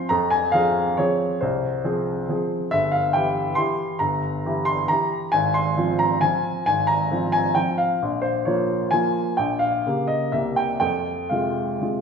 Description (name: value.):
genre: classical, piano waltz.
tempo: 119-147 BPM.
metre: 3/4.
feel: rubato.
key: F minor.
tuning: A4 = 442 Hz.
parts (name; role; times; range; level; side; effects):
warm upright piano; solo; 0.0-12.0 s; G1 to C6; -20 LUFS; equal; none.
room: wet recital hall reverb, RT60 1.7 s.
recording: recorded in a church or concert hall.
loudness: -20 LUFS.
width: side -6 dB against mid.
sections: 0.0-12.0 A section.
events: none.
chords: 0.1 Fm; 2.7 Edim/G; 5.3 Fm/Ab; 8.0 Bbm; 9.4 Gdim/Bb; 10.3 C7; 10.8 Fm.